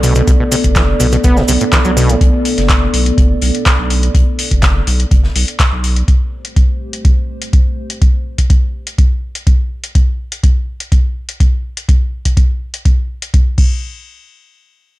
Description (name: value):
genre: acid house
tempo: 124 BPM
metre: 4/4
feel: straight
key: unclear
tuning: A4 = 440 Hz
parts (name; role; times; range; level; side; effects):
- dark analog pad; sustained chords; 0.0-9.9 s; A3 to D5; -20 LUFS; equal; chorus, sidechain pumping
- acid bass, saw; riff; 0.0-2.2 s; A2 to B3; -16 LUFS; equal; overdrive, sidechain pumping, tape echo
- saturated sub bass; bass; 0.0-6.0 s; F#1 to B1; -16 LUFS; equal; sidechain pumping
- big rock drum kit; drums; 0.0-6.0 s; hi-hat, snare drum; -29 LUFS; left 4 dB; none
- electro analog drum machine; drums; 0.0-13.7 s; crash cymbal, handclaps, hi-hat; -20 LUFS; left 1 dB; none
- maracas; percussion; 0.0-2.2 s; none; -23 LUFS; right 4 dB; none
- electronic kick drum; drums; 0.3-13.7 s; none; -11 LUFS; equal; none
room: little or no reverb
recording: none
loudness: -11 LUFS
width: side -17 dB against mid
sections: 0.0-13.8 A section; 13.8-15.0 B section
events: none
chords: 0.0 Bm7; 6.1 Am7; 13.6 N.C.